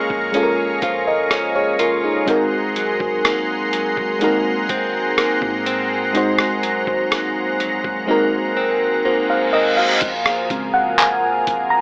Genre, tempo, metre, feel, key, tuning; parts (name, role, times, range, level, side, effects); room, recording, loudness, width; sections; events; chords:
contemporary R&B; 62 BPM; 4/4; straight; A4 = 440 Hz
mellow FM electric piano; accompaniment; 0.0-11.8 s; Db3 to Bb5; -21 LUFS; equal; chorus
lush unison pad; sustained chords; 0.0-11.8 s; Bb3 to Db6; -25 LUFS; equal; chorus
direct-recorded clean electric guitar; arpeggios; 0.0-10.6 s; Ab2 to F4; -28 LUFS; equal; spring reverb, tape echo
downlifter and reverse cymbal; sound effects; 0.0-2.3, 9.3-10.0 s; -26 LUFS; equal
warm 808-style bass; bass; 0.1-11.8 s; Ab1 to Ab2; -43 LUFS; equal
dusty soul sampler-style drum kit; drums; 0.1-11.7 s; crash cymbal, handclaps, hi-hat, kick drum, rim click; -24 LUFS; equal
little or no reverb; dry, gritty hardware recording, AM radio sound; -19 LUFS; mono
0.0-10.0 A section; 10.0-11.8 B section
reverse cymbal 9.3-10.0; FM electric piano solo 10.0-11.8
0.0 Bbm7; 2.3 Ab9; 10.0 Bbm7